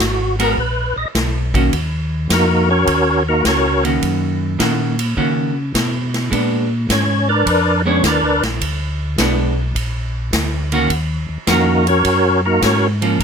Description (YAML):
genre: soul jazz organ trio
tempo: 105 BPM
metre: 4/4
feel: swing 68% on 8ths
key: unclear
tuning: A4 = 440 Hz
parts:
  - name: percussive tonewheel organ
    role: melody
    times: 0.0-13.2 s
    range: Bb3 to Eb5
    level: -16 LUFS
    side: equal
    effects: slow rotary speaker, overdrive, chorus vibrato
  - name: mellow tonewheel organ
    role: bass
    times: 0.0-13.2 s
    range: Ab1 to Db3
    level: -19 LUFS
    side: equal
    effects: overdrive, chorus vibrato, slow rotary speaker
  - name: swinging big-band drum kit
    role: drums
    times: 0.0-13.2 s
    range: hi-hat, kick drum, ride cymbal, snare drum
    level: -22 LUFS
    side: equal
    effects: none
  - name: vintage hollow-body jazz guitar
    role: accompaniment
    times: 0.4-13.2 s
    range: Eb3 to Bb4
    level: -19 LUFS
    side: right 2 dB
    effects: none
room: light reverb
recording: close, detailed microphones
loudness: -14 LUFS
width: side -6 dB against mid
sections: 0.0-13.2 A section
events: tonewheel organ solo 0.0-13.2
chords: 0.0 Abm9; 1.7 Ebm7; 6.3 Bb7b9; 10.9 Ebm7